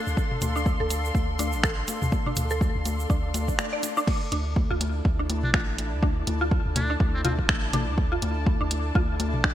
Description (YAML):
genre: minimal techno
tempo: 123 BPM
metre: 4/4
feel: swing 58% on 16ths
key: D minor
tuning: A4 = 442 Hz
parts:
  - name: dark chamber string section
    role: texture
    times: 0.0-9.5 s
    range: D4 to C6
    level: -34 LUFS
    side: left 2 dB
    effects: sidechain pumping
  - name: pulsing gated texture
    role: texture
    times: 0.0-9.5 s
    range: E4 to A4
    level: -39 LUFS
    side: right 2 dB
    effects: chorus, built-in reverb, sidechain pumping
  - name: punchy sub bass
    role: bass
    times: 0.1-9.5 s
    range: A1 to D2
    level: -29 LUFS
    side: equal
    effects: sidechain pumping
  - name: egg shaker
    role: percussion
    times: 0.1-4.1 s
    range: none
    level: -38 LUFS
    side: right 5 dB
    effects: none
  - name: electronic kick drum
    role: drums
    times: 0.2-9.5 s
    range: none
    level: -25 LUFS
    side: equal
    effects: overdrive, small room ambience
  - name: electronic congas and toms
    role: percussion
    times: 0.2-9.5 s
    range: none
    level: -33 LUFS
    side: left 4 dB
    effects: overdrive, small room ambience, digital delay
  - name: punchy analog drum machine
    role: drums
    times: 0.4-9.5 s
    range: crash cymbal, finger snaps, hi-hat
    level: -28 LUFS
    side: equal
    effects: small room ambience
  - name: mallet-like synth pluck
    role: riff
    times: 0.6-9.5 s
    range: D4 to D5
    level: -32 LUFS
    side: equal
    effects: ensemble chorus, cassette tape, sidechain pumping, ping-pong delay
  - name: swell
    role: sound effects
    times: 3.2-4.1 s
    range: none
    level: -35 LUFS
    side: right 1 dB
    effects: none
  - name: trumpet with metal mute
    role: melody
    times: 5.4-7.3 s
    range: C4 to D4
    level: -36 LUFS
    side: right 1 dB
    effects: digital delay
room: light reverb, digital ambience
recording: bright 1980s-style digital production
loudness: -23 LUFS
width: side -12 dB against mid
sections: 0.0-4.1 A section; 4.1-9.5 B section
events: swell 3.2-4.1; drop 4.1-9.5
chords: 0.0 Dm; 4.1 D5